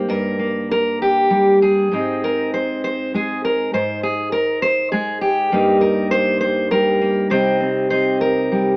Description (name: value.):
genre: folk, solo fingerstyle acoustic guitar.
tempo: 67 BPM (dotted quarters).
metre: 6/8.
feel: rubato.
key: unclear.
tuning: A4 = 442 Hz.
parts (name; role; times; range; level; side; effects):
fingerpicked steel-string acoustic guitar; solo; 0.0-8.8 s; G2 to C5; -15 LUFS; equal; none.
room: moderate studio reverb, RT60 0.6 s.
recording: AM radio sound.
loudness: -15 LUFS.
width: side -28 dB against mid.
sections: 0.0-8.8 A section.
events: none.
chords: 0.0 Eb/G; 1.9 Ab; 5.5 Eb/G; 7.3 Cm.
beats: | 0.08 0.99 | 1.91 2.83 | 3.73 4.62 | 5.52 6.41 | 7.30 8.21.